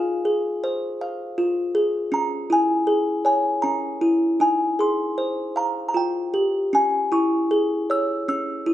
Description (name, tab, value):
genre	children's music, lullaby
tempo	52 BPM (dotted quarters)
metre	6/8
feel	rubato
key	unclear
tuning	A4 = 440 Hz
part	music box	solo	0.0-8.7 s	Db4 to Fb6	-20 LUFS	equal	none
room	moderate recital hall reverb, RT60 1.3 s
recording	dark, warm production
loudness	-20 LUFS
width	side -13 dB against mid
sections	0.0-8.7 A section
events	none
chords	0.0 Fm; 2.1 Dbm; 4.4 Ab/Eb; 5.6 Fsus24; 6.7 Dbm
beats	1.01 | 2.13 3.26 | 4.40 5.56 | 6.73 7.89